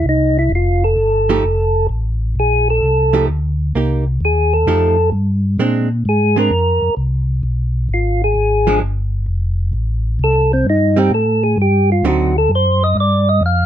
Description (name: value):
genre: jazz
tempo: 130 BPM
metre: 4/4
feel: swing 68% on 8ths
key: F mixolydian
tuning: A4 = 441 Hz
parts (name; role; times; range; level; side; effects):
- percussive tonewheel organ; melody; 0.0-13.7 s; C4 to F5; -15 LUFS; equal; slow rotary speaker
- mellow tonewheel organ; bass; 0.0-13.7 s; F1 to Bb2; -16 LUFS; equal; chorus vibrato, slow rotary speaker
- archtop guitar, miked and amplified; accompaniment; 1.3-12.3 s; D3 to G4; -18 LUFS; right 5 dB; none
room: little or no reverb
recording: dark, warm production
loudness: -13 LUFS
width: side -10 dB against mid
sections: 0.0-13.7 A section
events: tonewheel organ solo 0.0-13.7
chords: 0.0 Fadd9; 3.7 Cm7; 4.7 F9; 5.6 Bb9; 7.4 Bdim7(no3); 9.3 F9; 11.1 Fadd9; 12.0 D7b9; 13.0 G7(no3)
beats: | 0.05 0.52 0.98 1.44 | 1.90 2.36 2.83 3.29 | 3.75 4.21 4.67 5.13 | 5.59 6.05 6.51 6.97 | 7.43 7.90 8.36 8.82 | 9.28 9.74 10.20 10.66 | 11.12 11.58 12.04 12.50 | 12.96 13.43